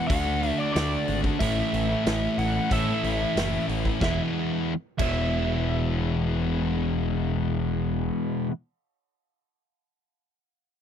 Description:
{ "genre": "classic rock", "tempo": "92 BPM", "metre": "4/4", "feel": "straight", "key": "E mixolydian", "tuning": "A4 = 439 Hz", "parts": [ { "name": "biting lead guitar", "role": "melody", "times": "0.0-7.4 s", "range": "D5 to F#5", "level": "-30 LUFS", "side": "equal", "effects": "wah, overdrive, slapback echo" }, { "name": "sludgy distorted guitar", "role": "riff", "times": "0.0-8.5 s", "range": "A2 to F#4", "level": "-28 LUFS", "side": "left 13 dB", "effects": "overdrive" }, { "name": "sludgy distorted guitar", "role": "riff", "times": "0.0-8.5 s", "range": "E2 to D4", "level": "-29 LUFS", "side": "right 10 dB", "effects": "overdrive" }, { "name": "growling picked electric bass", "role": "bass", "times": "0.1-8.1 s", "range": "E1 to A2", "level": "-29 LUFS", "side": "equal", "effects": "overdrive" }, { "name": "big rock drum kit", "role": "drums", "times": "0.1-5.2 s", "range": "crash cymbal, hi-hat, kick drum, snare drum", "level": "-31 LUFS", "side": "equal", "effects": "none" } ], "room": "little or no reverb", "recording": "dry, close 1970s-style studio recording", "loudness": "-23 LUFS", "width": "side -8 dB against mid", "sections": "0.0-4.0 A section; 4.0-6.6 B section", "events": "none", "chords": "0.1 D; 1.4 A; 4.0 E" }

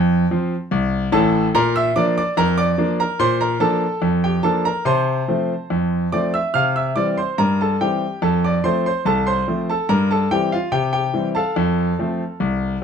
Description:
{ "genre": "ragtime piano", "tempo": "72 BPM", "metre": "2/4", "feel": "straight", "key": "F major", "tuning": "A4 = 440 Hz", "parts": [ { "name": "bright concert grand piano", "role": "solo", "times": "0.0-12.8 s", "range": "A1 to F6", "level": "-17 LUFS", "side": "equal", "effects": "none" } ], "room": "moderate studio reverb, RT60 0.5 s", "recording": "dark, warm production", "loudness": "-17 LUFS", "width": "side -7 dB against mid", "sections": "0.0-12.8 A section", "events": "none", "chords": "0.0 F; 1.5 Bb; 4.9 F/C; 6.6 C; 8.2 F; 9.9 C7/G; 11.6 F" }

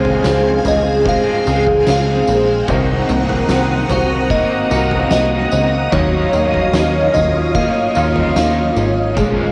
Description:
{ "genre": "dream pop", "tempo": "74 BPM", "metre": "4/4", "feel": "straight", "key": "unclear", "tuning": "A4 = 441 Hz", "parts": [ { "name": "glassy synth bell", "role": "melody", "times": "0.0-8.9 s", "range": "C5 to F5", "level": "-23 LUFS", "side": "equal", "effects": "chorus, cassette tape, tape echo, plate reverb" }, { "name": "raw garage guitar", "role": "accompaniment", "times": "0.0-9.5 s", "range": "Bb2 to Ab4", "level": "-27 LUFS", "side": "equal", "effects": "overdrive, tremolo, lush chorus, cassette tape, plate reverb" }, { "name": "soft string machine", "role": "sustained chords", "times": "0.0-9.5 s", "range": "C4 to Eb6", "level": "-23 LUFS", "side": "equal", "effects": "ensemble chorus, cassette tape, plate reverb" }, { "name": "picked twelve-string acoustic guitar", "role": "arpeggios", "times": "0.0-9.5 s", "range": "Eb3 to Ab4", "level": "-21 LUFS", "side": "equal", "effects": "ensemble chorus, cassette tape, tape echo, plate reverb" }, { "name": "plucky analog bass", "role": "bass", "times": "0.0-9.5 s", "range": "Ab1 to Eb2", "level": "-21 LUFS", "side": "equal", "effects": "none" }, { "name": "oversized low-tuned drum kit", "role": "drums", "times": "0.0-9.4 s", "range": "kick drum, snare drum, tambourine, toms", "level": "-24 LUFS", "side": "equal", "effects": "cassette tape" } ], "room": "moderate studio reverb, RT60 0.6 s", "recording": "home recording on cassette", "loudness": "-15 LUFS", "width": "mono", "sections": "0.0-9.5 A section", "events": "none", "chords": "0.0 Dbmaj7; 2.7 Cm7b5; 5.9 Ebm9" }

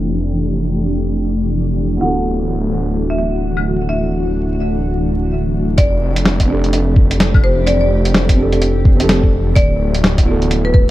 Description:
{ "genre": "future garage", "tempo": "127 BPM", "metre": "4/4", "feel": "swing 62% on 16ths", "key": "unclear", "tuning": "A4 = 438 Hz", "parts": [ { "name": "felt-muted upright piano", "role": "accompaniment", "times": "0.0-10.9 s", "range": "B3 to A4", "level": "-23 LUFS", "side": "right 2 dB", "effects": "sidechain pumping, dub echo" }, { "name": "granular cloud pad", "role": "sustained chords", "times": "0.0-10.9 s", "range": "E3 to G4", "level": "-21 LUFS", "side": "equal", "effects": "built-in reverb, sidechain pumping" }, { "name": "swelling detuned saw bass", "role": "bass", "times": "0.0-10.9 s", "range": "D1 to F1", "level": "-18 LUFS", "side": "equal", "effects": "sidechain pumping" }, { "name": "marimba with medium hard mallets", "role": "melody", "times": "2.0-10.8 s", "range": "B4 to F#5", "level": "-23 LUFS", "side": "left 1 dB", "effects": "dub echo" }, { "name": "lo-fi sampler-style drum kit", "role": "drums", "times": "3.6-10.6 s", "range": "claves, hi-hat, snare drum", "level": "-17 LUFS", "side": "equal", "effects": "none" }, { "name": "electronic kick drum", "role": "drums", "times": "5.8-10.9 s", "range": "none", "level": "-12 LUFS", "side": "equal", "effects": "none" } ], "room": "little or no reverb", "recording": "dark, warm production, vinyl crackle, low-pass filter", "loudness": "-13 LUFS", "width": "side -15 dB against mid", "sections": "0.0-5.8 A section; 5.8-10.9 B section", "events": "filter sweep on ambient pad 0.0-5.8; filter sweep 0.0-5.8", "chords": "0.0 F6; 2.0 D6; 5.8 F6; 9.6 D6" }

